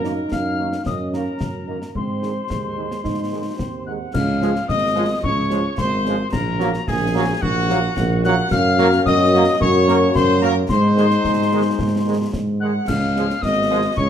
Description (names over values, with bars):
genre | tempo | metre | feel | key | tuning
military-style march for wind band | 110 BPM | 2/4 | straight | Db major | A4 = 439 Hz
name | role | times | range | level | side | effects
dark trumpet section | melody | 0.0-14.1 s | Gb4 to Gb5 | -24 LUFS | equal | none
mellow piccolo | second line | 0.0-14.1 s | Gb5 to Gb6 | -25 LUFS | left 5 dB | none
warm euphonium | second line | 0.0-4.1 s | Ab3 to Eb4 | -28 LUFS | right 2 dB | none
mellow French horn section | accompaniment | 0.0-13.8 s | Ab3 to Gb4 | -25 LUFS | left 6 dB | none
clear trombone section | sustained chords | 0.0-13.8 s | Eb3 to Bb3 | -25 LUFS | right 4 dB | none
warm tuba | bass | 0.0-14.1 s | Ab1 to Ab2 | -20 LUFS | right 2 dB | none
concert snare drum, concert bass drum and clash cymbals | drums | 0.0-14.1 s | none | -27 LUFS | left 1 dB | none
room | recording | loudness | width
wet large studio reverb, RT60 1.2 s | dark, warm production | -17 LUFS | side -9 dB against mid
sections
0.0-4.1 A section; 4.1-14.1 B section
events
none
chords
0.0 Ebm/Gb; 2.0 Ab; 4.1 Db; 6.3 Gb/Bb; 8.5 Gb; 10.7 Ab; 12.9 Db